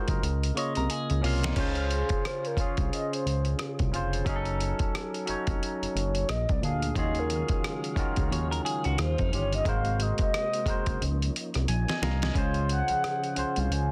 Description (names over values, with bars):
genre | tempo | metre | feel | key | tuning
R&B, neo-soul | 89 BPM | 4/4 | swing 60% on 16ths | Db major | A4 = 443 Hz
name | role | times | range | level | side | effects
barky tine electric piano | accompaniment | 0.0-13.9 s | Bb2 to Bb5 | -35 LUFS | equal | subtle chorus
fat analog bass | bass | 0.1-13.9 s | F1 to F2 | -31 LUFS | equal | none
dusty soul sampler-style drum kit | drums | 0.1-13.9 s | crash cymbal, hi-hat, kick drum, rim click, snare drum | -34 LUFS | equal | soft clipping on snare
semi-hollow electric guitar | second line | 0.6-1.8, 8.3-9.6 s | Eb4 to Db5 | -37 LUFS | equal | none
mellow horn-like synth lead | melody | 1.9-13.9 s | Ab4 to Ab5 | -34 LUFS | equal | chorus, tape echo
tonewheel organ | sustained chords | 7.0-12.3 s | C3 to F5 | -42 LUFS | equal | slow rotary speaker, chorus vibrato
room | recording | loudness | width
little or no reverb | dense, heavily limited modern master | -28 LUFS | mono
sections
0.0-1.6 A section; 1.6-12.4 B section; 12.4-13.9 C section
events
drum fill 0.2-1.6, 11.7-12.4; soft synth lead solo 1.6-12.4; tine electric piano fill 11.3-12.4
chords
0.2 Db69; 1.6 Dbmaj7; 4.3 Gbm6; 6.3 Bb7; 7.0 Ebm11; 9.0 Eb9; 9.7 Ab9; 11.0 Db69; 12.4 Dbmaj7